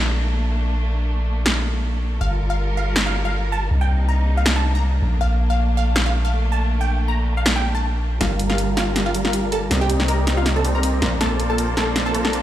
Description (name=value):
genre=future bass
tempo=160 BPM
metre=4/4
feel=swing 54% on 16ths, half-time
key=Bb major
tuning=A4 = 441 Hz
part: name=clear symphonic string section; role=sustained chords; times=0.0-12.4 s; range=C3 to A5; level=-29 LUFS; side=equal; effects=low-pass filter
part: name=long sustained 808-style bass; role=bass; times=0.0-12.4 s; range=G1 to C2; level=-20 LUFS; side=equal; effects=none
part: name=big-room dance drum kit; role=drums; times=1.5-12.4 s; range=finger snaps, hi-hat, snare drum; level=-23 LUFS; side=equal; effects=none
part: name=wide unison pluck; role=melody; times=2.2-12.4 s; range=F4 to Bb5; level=-26 LUFS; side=equal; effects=auto-pan, tape echo
part: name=dense compressed supersaw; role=riff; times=8.2-12.4 s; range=G3 to C6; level=-24 LUFS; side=right 1 dB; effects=low-pass filter
room=light reverb, digital ambience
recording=played on a big sound system in a bare room, large studio reverb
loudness=-18 LUFS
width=side -12 dB against mid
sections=0.0-8.2 A section; 8.2-12.4 B section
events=build-up 8.2-12.4; drum fill 8.2-12.4; filter sweep on supersaw synth 8.2-12.4; filter sweep on string section 8.2-12.4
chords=0.0 Bbmaj7; 2.2 Gm9; 3.7 Cm9; 5.0 Bbmaj7; 8.2 Gm9; 9.7 Cm9; 11.0 Bbmaj9